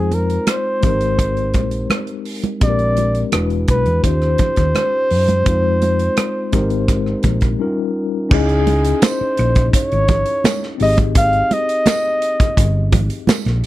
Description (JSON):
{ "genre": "lush 1970s-style soul", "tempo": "84 BPM", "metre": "4/4", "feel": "straight", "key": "Ab major", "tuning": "A4 = 439 Hz", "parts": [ { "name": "breathy flugelhorn", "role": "melody", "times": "0.0-12.9 s", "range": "Ab4 to F5", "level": "-19 LUFS", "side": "equal", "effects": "none" }, { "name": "mellow tine electric piano", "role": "accompaniment", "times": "0.0-13.7 s", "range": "G3 to Eb5", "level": "-22 LUFS", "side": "left 4 dB", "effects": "medium stereo tremolo" }, { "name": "hollow-body short-scale fingered electric bass", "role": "bass", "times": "0.0-13.6 s", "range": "E1 to Gb2", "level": "-18 LUFS", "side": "equal", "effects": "none" }, { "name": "modern studio drum kit", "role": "drums", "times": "0.1-13.7 s", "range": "crash cymbal, hi-hat, kick drum, rim click, snare drum", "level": "-18 LUFS", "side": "equal", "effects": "none" }, { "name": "congas", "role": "percussion", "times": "0.1-13.4 s", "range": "none", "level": "-22 LUFS", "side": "right 4 dB", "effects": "none" }, { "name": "tambourine", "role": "percussion", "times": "9.0-13.4 s", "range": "none", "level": "-32 LUFS", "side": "right 20 dB", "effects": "none" } ], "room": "little or no reverb", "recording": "none", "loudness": "-14 LUFS", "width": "side -15 dB against mid", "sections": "0.0-8.3 A section; 8.3-13.7 B section", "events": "break 7.6-8.3", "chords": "0.0 Fm7; 0.8 Abmaj9; 2.6 Bb13; 3.3 E9; 4.0 Eb13; 5.5 Fm7; 6.5 Abmaj9; 7.6 Eb9; 8.3 Dbmadd9; 10.8 Abmaj7", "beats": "0.47 1.19 1.90 | 2.62 3.33 4.04 4.76 | 5.47 6.18 6.89 7.61 | 8.32 9.03 9.74 10.45 | 11.15 11.86 12.57 13.28" }